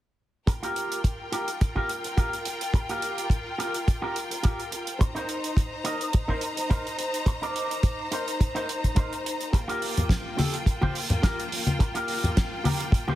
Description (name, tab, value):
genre	nu-disco, nu disco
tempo	106 BPM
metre	4/4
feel	swing 55% on 16ths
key	unclear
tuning	A4 = 440 Hz
part	bright studio string section	sustained chords	0.5-13.2 s	Bb3 to Bb5	-33 LUFS	left 1 dB	sidechain pumping
part	electric guitar with an envelope filter	riff	0.5-13.2 s	Eb4 to Eb5	-32 LUFS	right 1 dB	lush chorus, low-pass filter, ping-pong delay
part	damped 70s drum kit	drums	0.5-13.1 s	hi-hat, rim click, snare drum	-33 LUFS	right 3 dB	studio reverb
part	kick drum	drums	0.5-13.1 s	none	-22 LUFS	equal	studio reverb
part	congas	percussion	10.0-13.2 s	none	-26 LUFS	left 2 dB	none
room	light reverb, studio reverb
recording	heavily compressed radio sound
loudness	-24 LUFS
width	side -14 dB against mid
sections	0.5-13.2 A section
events	none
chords	0.5 Gm7; 5.0 Cm7; 9.5 Gm7